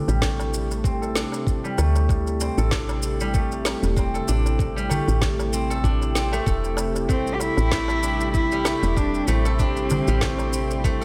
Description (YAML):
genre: organic downtempo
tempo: 96 BPM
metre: 4/4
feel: swing 56% on 16ths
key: A minor pentatonic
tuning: A4 = 442 Hz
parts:
  - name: warm analog pad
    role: sustained chords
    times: 0.0-11.0 s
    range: C3 to G4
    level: -32 LUFS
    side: equal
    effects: chorus, sidechain pumping
  - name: steel-string zither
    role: arpeggios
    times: 0.0-11.0 s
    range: G3 to A4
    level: -31 LUFS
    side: equal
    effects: low-pass filter, analog delay
  - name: woody FM bass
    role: bass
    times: 0.1-11.0 s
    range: E1 to D2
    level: -27 LUFS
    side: equal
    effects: sidechain pumping
  - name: electronic shaker and snare drum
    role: drums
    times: 0.1-11.0 s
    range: none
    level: -32 LUFS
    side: equal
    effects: small room ambience
  - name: darbuka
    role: percussion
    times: 0.1-10.5 s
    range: none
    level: -34 LUFS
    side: equal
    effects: dub echo
  - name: electronic kick drum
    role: drums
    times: 0.2-11.0 s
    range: none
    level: -26 LUFS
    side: equal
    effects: small room ambience
  - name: warm cello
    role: melody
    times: 7.1-11.0 s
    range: C4 to G4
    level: -28 LUFS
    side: equal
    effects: tape echo
room: light reverb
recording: echo-heavy mix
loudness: -23 LUFS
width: mono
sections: 0.0-11.0 A section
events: filter sweep on guzheng 0.0-11.0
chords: 0.0 Am7